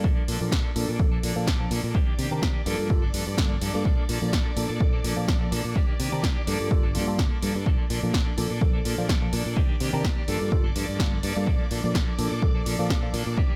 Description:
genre	filtered disco house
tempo	126 BPM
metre	4/4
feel	swing 54% on 16ths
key	Bb major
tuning	A4 = 440 Hz
part	tine electric piano	accompaniment	0.0-13.1 s	Eb3 to Bb4	-34 LUFS	equal	phaser, sidechain pumping, low-pass filter
part	string machine, full ensemble	sustained chords	0.0-13.6 s	D5 to D6	-40 LUFS	equal	ensemble chorus, sidechain pumping, low-pass filter
part	clean electric guitar	riff	0.0-13.6 s	Eb3 to A4	-36 LUFS	equal	tremolo, sidechain pumping, low-pass filter
part	fingered electric bass	bass	0.0-13.5 s	G1 to C3	-32 LUFS	equal	sidechain pumping, low-pass filter
part	electronic kick drum	drums	0.0-13.5 s	none	-27 LUFS	equal	none
part	punchy analog drum machine	drums	0.3-13.2 s	hi-hat, snare drum	-35 LUFS	equal	sidechain pumping on hats
room	light reverb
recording	none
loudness	-25 LUFS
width	mono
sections	0.0-13.6 A section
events	none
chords	0.0 Bbmaj7; 1.9 Cm9; 2.7 Gm9; 3.9 Bbmaj7; 5.8 Cm9; 6.5 Gm9; 7.7 Bbmaj7; 9.6 Cm9; 10.3 Gm9; 11.5 Bbmaj7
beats	| 0.04 0.52 1.00 1.47 | 1.95 2.42 2.90 3.38 | 3.85 4.33 4.81 5.28 | 5.76 6.24 6.71 7.19 | 7.66 8.14 8.62 9.09 | 9.57 10.04 10.52 11.00 | 11.47 11.95 12.43 12.90 | 13.38

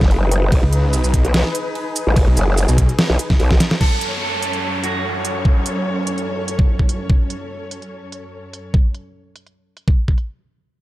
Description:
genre	heavy wobble dubstep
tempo	146 BPM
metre	4/4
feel	swing 53% on 16ths, half-time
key	F# dorian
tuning	A4 = 444 Hz
part	rich studio string section	sustained chords	0.0-8.7 s	F#2 to C#5	-25 LUFS	left 1 dB	sidechain pumping, low-pass filter
part	growl bass	bass	0.0-3.6 s	F#1 to B1	-16 LUFS	equal	chorus, overdrive
part	dubstep drum kit	drums	0.0-10.3 s	crash cymbal, hi-hat, ride cymbal, shaker, snare drum	-22 LUFS	right 1 dB	low-pass filter on cymbals, low-pass filter on perc, low-pass filter on hats, low-pass filter on snare
part	electronic kick drum	drums	0.0-10.2 s	none	-15 LUFS	equal	none
part	snarling distorted saw bass	bass	0.6-2.9 s	B1 to C#2	-16 LUFS	equal	distortion, overdrive
part	electric guitar at the edge of break-up	melody	3.8-5.4 s	F#4 to A4	-26 LUFS	right 5 dB	dub echo
part	downlifter	sound effects	3.8-7.1 s	none	-27 LUFS	equal	none
room	little or no reverb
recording	dark, warm production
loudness	-15 LUFS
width	side -16 dB against mid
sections	0.0-3.8 A section; 3.8-10.4 B section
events	drop 0.0-3.8; drum fill 3.5-3.8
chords	0.0 B; 3.8 F#m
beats	0.11 | 0.52 0.93 1.34 1.75 | 2.16 2.58 2.99 3.40 | 3.81 4.22 4.63 5.04 | 5.45 5.86 6.27 6.68 | 7.10 7.51 7.92 8.33 | 8.74 9.15 9.56 9.97

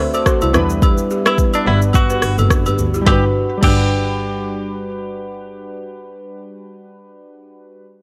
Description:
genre	afrobeats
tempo	107 BPM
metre	4/4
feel	swing 55% on 16ths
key	G major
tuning	A4 = 445 Hz
part	glassy digital keys	accompaniment	0.0-7.8 s	G3 to F#5	-24 LUFS	equal	chorus
part	balafon	riff	0.0-4.7 s	D4 to D5	-27 LUFS	equal	none
part	muted double bass	bass	0.0-6.1 s	F#1 to E2	-21 LUFS	equal	none
part	afro-pop drum kit	drums	0.1-3.8 s	crash cymbal, hi-hat, kick drum, rim click, shaker, snare drum	-19 LUFS	equal	none
part	agogo bells	percussion	0.1-3.8 s	none	-28 LUFS	equal	none
part	direct-recorded clean electric guitar	melody	1.3-4.7 s	D4 to G4	-26 LUFS	equal	tape echo
room	little or no reverb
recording	dry, gritty hardware recording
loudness	-16 LUFS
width	mono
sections	0.0-3.1 A section; 3.1-5.3 B section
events	none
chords	0.0 D7; 0.5 Em7; 1.7 Gmaj7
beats	0.26 | 0.82 1.38 1.94 2.50 | 3.06 3.63 4.19 4.75

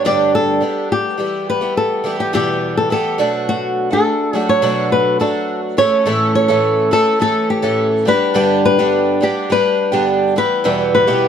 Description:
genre	pop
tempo	105 BPM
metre	4/4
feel	straight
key	A mixolydian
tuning	A4 = 440 Hz
part	flamenco guitar	melody	0.0-11.3 s	F#4 to D5	-16 LUFS	left 2 dB	plate reverb
part	picked twelve-string acoustic guitar	accompaniment	0.0-11.3 s	E2 to A4	-16 LUFS	right 2 dB	none
room	light reverb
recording	dark, warm production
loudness	-13 LUFS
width	side -8 dB against mid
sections	0.0-5.8 A section; 5.8-11.3 B section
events	none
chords	0.0 G; 1.2 Em; 3.2 Bm7; 5.8 A; 8.1 G; 10.4 Em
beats	0.05 0.62 | 1.19 1.76 2.34 2.91 | 3.48 4.05 4.63 5.20 | 5.77 6.35 6.92 7.49 | 8.06 8.64 9.21 9.78 | 10.36 10.93

